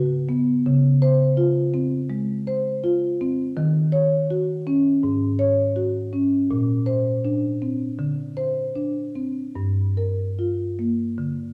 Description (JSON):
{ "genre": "classical, contemporary piece for solo marimba", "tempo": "81 BPM", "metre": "4/4", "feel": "uneven beats, rubato", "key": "unclear", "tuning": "A4 = 440 Hz", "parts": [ { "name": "marimba with soft mallets", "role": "solo", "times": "0.0-11.5 s", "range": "G2 to Db5", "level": "-22 LUFS", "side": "equal", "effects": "none" } ], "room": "wet stone room reverb, RT60 1.4 s", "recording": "heard from further back in the room", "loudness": "-22 LUFS", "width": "mono", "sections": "0.0-11.5 A section", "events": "none", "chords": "0.0 Db7sus4; 0.7 C#maj7; 3.6 Ebm7; 5.0 Ab7sus4; 6.5 Bbadd9; 8.0 Csus2/D; 9.6 Gm7", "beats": "| 0.65 1.38 2.10 2.83 | 3.57 4.30 5.04 5.77 | 6.50 7.24 7.99 8.75 | 9.56 10.38 11.18" }